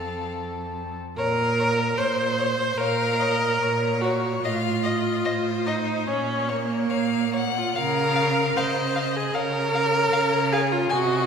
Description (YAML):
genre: classical, slow romantic movement for string quartet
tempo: 66-77 BPM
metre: 4/4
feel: rubato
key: Bb minor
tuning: A4 = 440 Hz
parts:
  - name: clear violin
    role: melody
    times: 0.0-11.3 s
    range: C5 to Gb5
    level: -30 LUFS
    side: left 6 dB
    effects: none
  - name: warm violin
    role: second line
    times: 0.0-11.0 s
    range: A4 to Ab5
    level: -31 LUFS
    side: left 3 dB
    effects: none
  - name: clear viola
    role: accompaniment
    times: 0.0-11.3 s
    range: Bb3 to C5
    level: -23 LUFS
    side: right 1 dB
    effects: none
  - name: clear cello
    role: bass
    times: 0.0-11.3 s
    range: F2 to Db3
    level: -28 LUFS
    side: right 3 dB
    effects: none
room: wet concert hall reverb, RT60 2.0 s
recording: recorded in a church or concert hall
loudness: -21 LUFS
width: side -6 dB against mid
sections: 0.0-1.2 A section; 1.2-11.3 A section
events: none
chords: 0.0 F; 1.2 Bbm; 4.4 F7/A; 6.1 Bbm; 7.8 Db